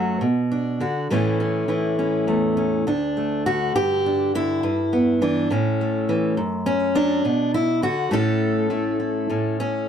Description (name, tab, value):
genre	folk, solo fingerstyle acoustic guitar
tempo	68 BPM (dotted quarters)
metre	6/8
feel	rubato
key	unclear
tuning	A4 = 437 Hz
part	fingerpicked steel-string acoustic guitar	solo	0.0-9.9 s	D2 to A4	-19 LUFS	equal	none
room	light reverb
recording	dark, warm production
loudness	-19 LUFS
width	side -8 dB against mid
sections	0.0-2.9 A section; 2.9-9.9 B section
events	none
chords	0.2 Bm; 1.1 A; 2.9 D5; 3.8 G5; 4.6 Em/G; 5.5 A; 6.4 N.C.; 7.2 Bm; 8.1 A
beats	0.22 | 1.10 1.98 | 2.88 3.76 | 4.64 5.51 | 6.37 7.24 | 8.12 9.00